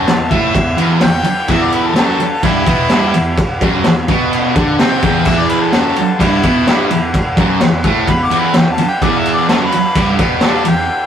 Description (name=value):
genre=garage rock duo or trio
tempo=128 BPM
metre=4/4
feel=straight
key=E minor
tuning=A4 = 443 Hz
part: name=warm harmonica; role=melody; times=0.0-11.1 s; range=E4 to D6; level=-18 LUFS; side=left 2 dB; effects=overdrive
part: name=combo organ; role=sustained chords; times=0.0-11.1 s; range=G4 to E5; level=-28 LUFS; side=right 2 dB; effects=none
part: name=thick fuzz guitar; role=riff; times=0.0-10.8 s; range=E2 to D4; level=-14 LUFS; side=right 1 dB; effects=distortion
part: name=raw garage drum kit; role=drums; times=0.1-10.8 s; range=crash cymbal, kick drum, ride cymbal, snare drum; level=-15 LUFS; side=equal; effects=none
room=moderate studio reverb, RT60 0.6 s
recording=rough rehearsal-room recording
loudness=-11 LUFS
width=side -9 dB against mid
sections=0.0-11.1 A section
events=harmonica solo 0.0-11.1; break 10.9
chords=0.0 Em